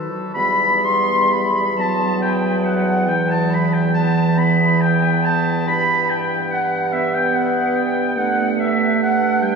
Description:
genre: classical, slow romantic movement for wind quintet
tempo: 39-49 BPM (dotted quarters)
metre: 12/8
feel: rubato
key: E minor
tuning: A4 = 444 Hz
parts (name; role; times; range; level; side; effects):
- warm oboe; second line; 0.0-9.6 s; A4 to C6; -19 LUFS; equal; none
- bright clarinet; accompaniment; 0.0-9.6 s; B3 to F#4; -28 LUFS; right 5 dB; none
- mellow French horn; accompaniment; 0.0-9.6 s; D#3 to B3; -20 LUFS; right 3 dB; none
- silver concert flute; melody; 0.3-9.6 s; E5 to C6; -26 LUFS; left 2 dB; none
- warm bassoon; bass; 0.4-9.6 s; E2 to G2; -24 LUFS; equal; none
room: wet cathedral reverb, RT60 5.1 s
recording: studio ambience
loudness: -15 LUFS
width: side -5 dB against mid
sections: 0.4-9.6 A section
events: none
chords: 0.4 Em; 5.7 Em/G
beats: | 0.35 1.78 3.08 4.37 | 5.67 6.94 8.18 9.43

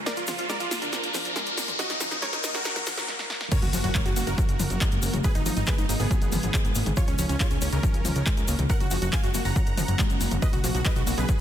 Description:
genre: uplifting trance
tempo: 139 BPM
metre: 4/4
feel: straight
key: F# major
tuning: A4 = 440 Hz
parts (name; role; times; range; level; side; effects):
- shimmering ambient pad; sustained chords; 0.0-11.4 s; G#2 to E#5; -36 LUFS; equal; chorus, built-in reverb, sidechain pumping
- riser and impact; sound effects; 0.0-5.2 s; none; -32 LUFS; left 1 dB; none
- supersaw stab; melody; 0.1-11.4 s; B3 to A#5; -32 LUFS; right 2 dB; sidechain pumping, tape echo
- wide unison pluck; arpeggios; 0.1-11.3 s; C#3 to A#3; -34 LUFS; left 3 dB; sidechain pumping, tape echo
- punchy analog drum machine; drums; 0.1-11.4 s; crash cymbal, handclaps, hi-hat, snare drum, toms; -31 LUFS; equal; overdrive, sidechain pumping on hats, sidechain pumping on toms, sidechain pumping on cymbals
- egg shaker; percussion; 0.1-11.4 s; none; -37 LUFS; left 5 dB; none
- electronic kick drum; drums; 3.5-11.4 s; none; -25 LUFS; equal; none
- fat analog bass; bass; 3.6-11.2 s; F#1 to C#2; -28 LUFS; equal; tube saturation, sidechain pumping
room: light reverb, digital ambience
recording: dense, heavily limited modern master, high-pass filter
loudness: -23 LUFS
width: side -10 dB against mid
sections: 0.0-3.5 A section; 3.5-11.4 B section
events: build-up 0.0-3.5; drum fill 0.0-3.1, 3.1-3.5; riser 0.0-3.1; filter sweep on synth pluck 0.0-3.5; break 3.1-3.5; drop 3.5-11.4; impact 3.5-5.2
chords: 0.1 A#; 1.8 D#madd9; 3.5 F#add9; 5.2 G#madd9; 7.0 C#; 8.7 F#add9; 10.4 Bsus2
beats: | 0.06 0.49 0.93 1.36 | 1.79 2.22 2.65 3.08 | 3.52 3.95 4.38 4.81 | 5.24 5.67 6.11 6.54 | 6.97 7.40 7.83 8.27 | 8.70 9.13 9.56 9.99 | 10.42 10.86 11.29

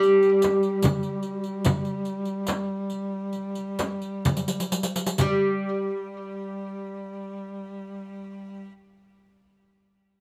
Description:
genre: Turkish makam ensemble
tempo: 62-77 BPM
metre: 4/4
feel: straight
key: unclear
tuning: A4 = 439 Hz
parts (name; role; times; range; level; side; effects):
- oud; melody; 0.0-8.7 s; G3; -26 LUFS; equal; tape echo
- mellow duduk; drone; 0.0-8.7 s; G3; -34 LUFS; equal; none
- riq; percussion; 0.0-5.6 s; none; -32 LUFS; equal; none
- darbuka; percussion; 0.1-5.6 s; none; -30 LUFS; equal; none
- frame drum; percussion; 0.4-5.6 s; none; -30 LUFS; equal; none
room: light reverb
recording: none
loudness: -26 LUFS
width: mono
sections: 0.0-5.2 A section; 5.2-9.0 B section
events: slowing down 0.0-5.2; drum fill 4.2-5.2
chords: none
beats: 0.05 0.84 | 1.65 2.48 3.35 4.24 | 5.18 6.14 7.10 8.06

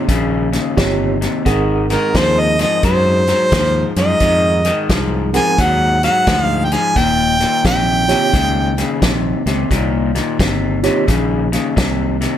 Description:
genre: electric blues shuffle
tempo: 87 BPM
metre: 4/4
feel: swing 64% on 8ths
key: unclear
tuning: A4 = 440 Hz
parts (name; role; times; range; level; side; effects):
- reed electric piano; accompaniment; 0.0-11.1 s; C4 to Gb5; -20 LUFS; right 5 dB; overdrive, fast tremolo
- electric guitar at the edge of break-up; riff; 0.0-12.4 s; Eb2 to Gb3; -18 LUFS; left 3 dB; none
- fingered electric bass; bass; 0.1-12.3 s; Eb1 to Gb2; -19 LUFS; equal; none
- natural country drum kit; drums; 0.1-12.3 s; hi-hat, kick drum, snare drum; -20 LUFS; equal; none
- warm harmonica; melody; 1.9-9.0 s; Bb4 to Ab5; -15 LUFS; right 1 dB; plate reverb
room: light reverb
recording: none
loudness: -13 LUFS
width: side -10 dB against mid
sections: 0.0-12.4 A section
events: none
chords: 0.0 Eb9; 1.5 Ab9; 7.0 Eb7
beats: 0.09 0.77 | 1.46 2.15 2.84 3.52 | 4.21 4.90 5.58 6.27 | 6.96 7.64 8.33 9.02 | 9.71 10.39 11.08 11.77

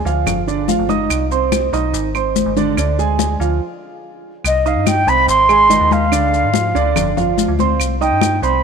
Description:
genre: latin, Cuban son and guajira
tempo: 143 BPM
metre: 4/4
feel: straight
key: C harmonic minor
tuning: A4 = 439 Hz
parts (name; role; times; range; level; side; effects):
- metallic FM bass; bass; 0.0-8.6 s; G1 to Ab2; -20 LUFS; left 2 dB; none
- dark grand piano; arpeggios; 0.1-8.6 s; D3 to Eb6; -19 LUFS; right 10 dB; none
- congas; percussion; 0.1-8.6 s; none; -21 LUFS; left 15 dB; none
- maracas; percussion; 0.1-8.6 s; none; -27 LUFS; left 17 dB; none
- claves; percussion; 0.3-8.4 s; none; -25 LUFS; right 14 dB; none
- mellow silver concert flute; melody; 4.5-8.6 s; Eb5 to C6; -14 LUFS; right 1 dB; tape echo
room: moderate plate reverb, RT60 3.7 s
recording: 1960s-style stereo with parts hard left and right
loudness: -13 LUFS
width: side -6 dB against mid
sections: 0.0-4.5 A section; 4.5-8.6 B section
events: stop 3.6-4.5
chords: 0.3 G5; 1.1 Cm; 1.9 Ab; 2.8 Ddim; 3.6 N.C.; 4.5 Cm; 5.3 Ab; 6.1 Ddim; 7.0 G5; 7.8 Cm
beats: 0.27 0.68 | 1.10 1.52 1.94 2.36 | 2.78 3.19 3.61 4.03 | 4.45 4.87 5.29 5.71 | 6.12 6.54 6.96 7.38 | 7.80 8.21 8.63

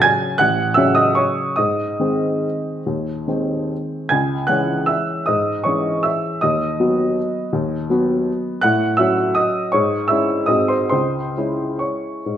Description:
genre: classical, piano waltz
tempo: 131-174 BPM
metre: 3/4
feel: rubato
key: C# minor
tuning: A4 = 440 Hz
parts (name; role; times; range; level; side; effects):
- warm upright piano; solo; 0.0-12.4 s; A1 to G#6; -16 LUFS; equal; none
room: moderate recital hall reverb, RT60 1.6 s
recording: none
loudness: -17 LUFS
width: side -10 dB against mid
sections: 0.0-12.4 A section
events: none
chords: 0.0 F#m/A; 1.6 G#; 4.1 C#m; 6.4 B/D#; 8.6 F#m/A; 9.7 C#m/G#; 10.5 G#7; 10.9 C#m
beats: 0.04 | 0.40 0.77 1.17 | 1.58 2.00 2.44 | 2.86 3.28 3.71 | 4.12 4.50 4.88 | 5.28 5.66 6.05 | 6.43 6.80 7.17 | 7.53 7.90 8.28 | 8.64 8.99 9.37 | 9.73 10.09 10.49 | 10.92 11.36 11.81 | 12.25

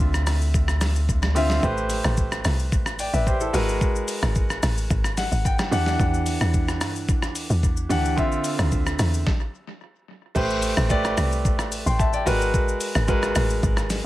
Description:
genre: amapiano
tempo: 110 BPM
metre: 4/4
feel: straight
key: unclear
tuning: A4 = 437 Hz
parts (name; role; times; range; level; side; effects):
- clear concert grand piano; accompaniment; 0.0-14.1 s; D3 to C6; -25 LUFS; equal; none
- punchy sub bass; bass; 0.0-1.6 s; D2; -21 LUFS; equal; none
- dusty soul sampler-style drum kit; drums; 0.0-14.0 s; crash cymbal, hi-hat, kick drum, rim click, shaker, snare drum; -25 LUFS; equal; analog delay
- woody log drum bass; bass; 1.6-14.0 s; G#1 to G2; -24 LUFS; equal; none
room: digital ambience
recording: echo-heavy mix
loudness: -20 LUFS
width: side -16 dB against mid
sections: 0.0-10.4 A section; 10.4-14.1 B section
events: grand piano fill 4.9-6.0; stop 9.3-10.4; drop 10.4-14.1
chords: 0.0 Dm9; 1.6 Am9; 3.5 G#m9; 5.7 Em9; 8.2 Dm9; 10.4 Am9; 12.3 G#m9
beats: 0.54 1.09 | 1.63 2.18 2.72 3.27 | 3.81 4.36 4.90 5.45 | 6.00 6.54 7.09 7.63 | 8.18 8.72 9.27 9.81 | 10.36 10.90 11.45 11.99 | 12.54 13.09 13.63

